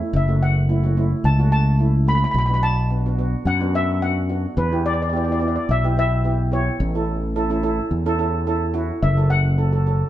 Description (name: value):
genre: calypso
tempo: 108 BPM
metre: 4/4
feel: straight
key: B minor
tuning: A4 = 440 Hz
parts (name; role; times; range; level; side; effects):
- steel pan; accompaniment; 0.0-10.1 s; A3 to A4; -26 LUFS; right 3 dB; none
- fretless electric bass; bass; 0.1-10.0 s; F#1 to F#2; -19 LUFS; equal; none
- steel pan; melody; 0.2-10.1 s; B4 to B5; -24 LUFS; left 2 dB; none
room: moderate stone room reverb, RT60 1.0 s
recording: band playing live in one room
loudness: -18 LUFS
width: side -13 dB against mid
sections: 0.0-10.1 A section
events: none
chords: 0.1 F#m7; 2.4 Bm7; 4.6 Em; 6.8 A; 9.0 F#m